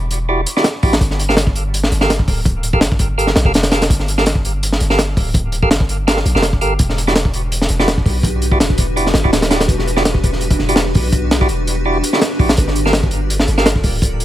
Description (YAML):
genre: drum and bass, jungle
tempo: 166 BPM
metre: 4/4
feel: swing 54% on 16ths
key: E minor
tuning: A4 = 440 Hz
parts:
  - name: long sustained 808-style bass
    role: bass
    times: 0.0-14.2 s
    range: D1 to B1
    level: -19 LUFS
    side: equal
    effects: none
  - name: crunchy breakbeat drum kit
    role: drums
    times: 0.1-14.2 s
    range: hi-hat, kick drum, snare drum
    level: -15 LUFS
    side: equal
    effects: none
  - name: percussive tonewheel organ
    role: stabs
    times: 0.3-13.7 s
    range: E4 to F5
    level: -21 LUFS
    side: right 2 dB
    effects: overdrive, stopped rotary speaker, dub echo
room: small room ambience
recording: none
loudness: -13 LUFS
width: side -13 dB against mid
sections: 0.0-14.2 A section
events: none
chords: 0.0 Em9; 1.0 Gm9; 6.8 Em9; 12.6 Gm9